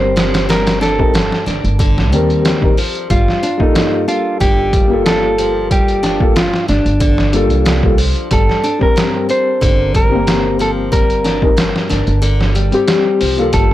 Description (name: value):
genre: trip hop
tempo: 92 BPM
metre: 4/4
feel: straight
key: unclear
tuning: A4 = 440 Hz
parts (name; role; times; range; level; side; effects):
- mellow electric guitar; melody; 0.0-13.7 s; D4 to C5; -18 LUFS; equal; vintage 12-bit sampler grit, tape echo
- felt-muted upright piano; accompaniment; 0.0-13.7 s; G3 to Bb4; -18 LUFS; left 2 dB; tremolo, tape echo
- flamenco guitar; arpeggios; 0.0-13.7 s; G2 to D4; -22 LUFS; left 1 dB; tape echo
- upright bass; bass; 0.0-13.7 s; G1 to Eb2; -18 LUFS; equal; tube saturation
- trip hop sampler-style drum kit; drums; 0.2-13.7 s; hi-hat, kick drum, snare drum; -16 LUFS; equal; none
room: studio ambience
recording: dry, gritty hardware recording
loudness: -11 LUFS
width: side -14 dB against mid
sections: 0.0-13.7 A section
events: kick drops out 12.2-13.5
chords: 0.0 Eb6/G; 3.1 Gm9; 8.3 Eb6/G (rootless)